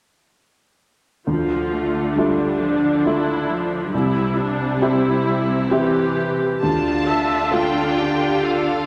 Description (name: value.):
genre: cinematic.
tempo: 67 BPM.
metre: 3/4.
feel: rubato.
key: D minor.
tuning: A4 = 440 Hz.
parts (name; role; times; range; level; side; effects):
rich symphonic viola section; accompaniment; 1.3-8.9 s; E3 to E5; -24 LUFS; equal; none.
warm grand piano; accompaniment; 1.3-8.9 s; C2 to F5; -24 LUFS; equal; none.
rich symphonic cello section; bass; 1.3-8.9 s; C3 to D3; -28 LUFS; equal; none.
clear chamber violin section; melody; 6.6-8.9 s; F5 to A5; -27 LUFS; equal; none.
clear symphonic violin section; second line; 6.6-8.9 s; D4 to F4; -26 LUFS; equal; none.
room: wet scoring stage reverb, RT60 2.0 s.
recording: none.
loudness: -20 LUFS.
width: mono.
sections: 1.3-6.6 A section; 6.6-8.9 B section.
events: none.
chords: 1.3 Dmadd9; 3.9 C; 6.6 Dm.